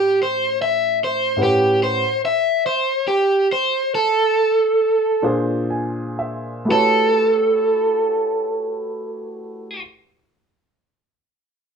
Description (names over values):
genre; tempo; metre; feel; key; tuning
blues; 40-50 BPM (dotted quarters); 12/8; straight; A mixolydian; A4 = 440 Hz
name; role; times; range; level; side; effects
overdriven semi-hollow guitar; melody; 0.0-9.8 s; G4 to E5; -17 LUFS; right 1 dB; plate reverb
warm grand piano; accompaniment; 0.0-9.8 s; A2 to B5; -24 LUFS; equal; plate reverb
room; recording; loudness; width
wet studio reverb, RT60 0.5 s; rough home demo mix; -16 LUFS; side -6 dB against mid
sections
0.0-6.7 A section; 6.7-11.8 B section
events
slowing down 0.0-6.7; overdriven electric guitar solo 0.0-6.7; grand piano fill 5.2-6.7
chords
0.0 A13; 5.2 Bb9; 6.7 A13